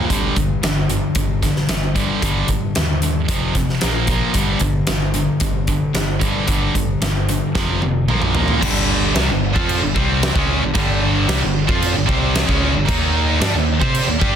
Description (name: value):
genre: hard rock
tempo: 113 BPM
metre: 4/4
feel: straight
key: G minor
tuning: A4 = 440 Hz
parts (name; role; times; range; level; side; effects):
- sludgy distorted guitar; riff; 0.0-14.4 s; F2 to C5; -22 LUFS; left 7 dB; overdrive
- tight distorted guitar; riff; 0.0-14.4 s; F2 to C5; -23 LUFS; right 11 dB; distortion
- hollow-body short-scale fingered electric bass; bass; 0.1-14.4 s; F1 to C3; -23 LUFS; equal; none
- huge arena drum kit; drums; 0.1-14.3 s; crash cymbal, hi-hat, kick drum, snare drum, toms; -20 LUFS; equal; none
- scooped high-gain guitar; riff; 8.6-14.4 s; G2 to C5; -22 LUFS; equal; distortion
room: light reverb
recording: dense, heavily limited modern master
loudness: -16 LUFS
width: side -8 dB against mid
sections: 0.0-8.6 A section; 8.6-14.4 B section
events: drum fill 7.6-8.6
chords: 0.1 G5; 3.3 F5; 3.8 Bb5; 4.4 G5; 7.6 F5; 8.1 Bb5; 8.6 G5; 12.9 Eb5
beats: | 0.10 0.63 1.17 1.70 | 2.23 2.76 3.29 3.83 | 4.36 4.89 5.43 5.96 | 6.49 7.03 7.56 8.10 | 8.63 9.16 9.69 10.23 | 10.76 11.29 11.82 12.36 | 12.89 13.42 13.96